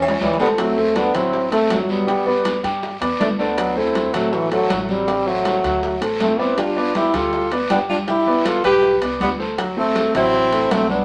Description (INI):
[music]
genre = Afro-Cuban jazz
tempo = 160 BPM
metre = 4/4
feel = straight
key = D mixolydian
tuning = A4 = 440 Hz
[part]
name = clear French horn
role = melody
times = 0.0-11.0 s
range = E3 to G4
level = -22 LUFS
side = equal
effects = none
[part]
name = warm baby grand piano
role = accompaniment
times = 0.0-11.0 s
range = F#3 to G5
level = -24 LUFS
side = equal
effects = none
[part]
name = upright bass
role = bass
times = 0.0-11.0 s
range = G1 to G2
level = -39 LUFS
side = equal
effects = none
[part]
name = agogo bells and timbales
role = percussion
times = 0.0-10.9 s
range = none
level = -31 LUFS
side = equal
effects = none
[part]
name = congas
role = percussion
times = 0.0-11.0 s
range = none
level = -31 LUFS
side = equal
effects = none
[part]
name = breathy tenor saxophone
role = second line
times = 0.2-11.0 s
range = G3 to B4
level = -27 LUFS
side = equal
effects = none
[part]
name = cowbell and bongos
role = percussion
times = 0.2-10.9 s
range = none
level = -35 LUFS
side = equal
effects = none
[part]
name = guiro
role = percussion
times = 0.2-11.0 s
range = none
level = -35 LUFS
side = equal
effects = none
[sound]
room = wet studio reverb, RT60 0.6 s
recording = none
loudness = -19 LUFS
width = mono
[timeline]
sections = 0.6-11.0 A section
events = drum fill 0.0-0.6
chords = 0.0 A7; 0.6 D9; 2.1 Gadd9; 3.6 D9; 5.1 Am7; 5.8 D6; 6.6 G7; 9.6 D13